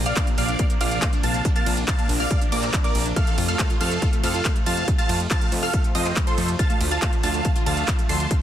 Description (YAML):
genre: uplifting trance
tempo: 140 BPM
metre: 4/4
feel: straight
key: Bb major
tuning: A4 = 440 Hz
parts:
  - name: fat analog bass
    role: bass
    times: 0.0-8.3 s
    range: Bb1 to F2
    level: -26 LUFS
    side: equal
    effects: sidechain pumping
  - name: big supersaw lead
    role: melody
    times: 0.1-8.3 s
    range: A4 to C6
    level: -28 LUFS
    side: right 1 dB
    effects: phaser, vintage 12-bit sampler grit, sidechain pumping, dub echo
  - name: wide unison pluck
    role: second line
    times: 0.1-8.3 s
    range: C6 to C7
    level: -32 LUFS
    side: right 1 dB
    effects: sidechain pumping, digital delay
  - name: wide unison pluck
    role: arpeggios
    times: 0.1-8.3 s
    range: A3 to F4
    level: -32 LUFS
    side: left 1 dB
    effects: phaser, sidechain pumping, digital delay
  - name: techno drum kit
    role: drums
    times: 0.1-8.4 s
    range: handclaps, hi-hat, ride cymbal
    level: -28 LUFS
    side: right 1 dB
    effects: none
  - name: lush unison pad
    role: sustained chords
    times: 0.2-8.4 s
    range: C3 to F4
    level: -31 LUFS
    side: right 1 dB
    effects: chorus, phaser, sidechain pumping
  - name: electronic kick drum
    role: drums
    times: 0.2-8.4 s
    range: none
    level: -22 LUFS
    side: equal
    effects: none
room: little or no reverb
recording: dense, heavily limited modern master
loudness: -19 LUFS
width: side -11 dB against mid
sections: 0.0-8.4 A section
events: none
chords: 0.0 Bbadd9; 3.2 F; 6.6 Dm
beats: 0.16 0.59 1.02 | 1.45 1.88 2.31 2.74 | 3.16 3.59 4.02 4.45 | 4.88 5.31 5.74 6.16 | 6.59 7.02 7.45 7.88 | 8.31